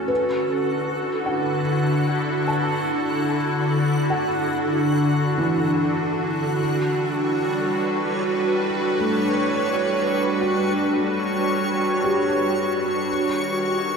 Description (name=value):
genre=ambient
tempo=free time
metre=none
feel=none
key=unclear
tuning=A4 = 440 Hz
part: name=evolving wavetable pad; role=sustained chords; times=0.0-14.0 s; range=D3 to B4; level=-21 LUFS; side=equal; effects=ensemble chorus, built-in reverb
part: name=felt-muted upright piano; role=arpeggios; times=0.0-13.2 s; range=E3 to A5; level=-28 LUFS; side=equal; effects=ping-pong delay
part: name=backwards swelling texture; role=texture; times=0.0-14.0 s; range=C#5 to F#6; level=-30 LUFS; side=right 1 dB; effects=built-in reverb
room=wet concert hall reverb, RT60 2.1 s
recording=none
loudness=-20 LUFS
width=side -5 dB against mid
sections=0.0-14.0 A section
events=fade-in on synth texture 0.0-14.0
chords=0.1 Dadd9; 6.6 Gmaj7; 13.1 D#madd9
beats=free time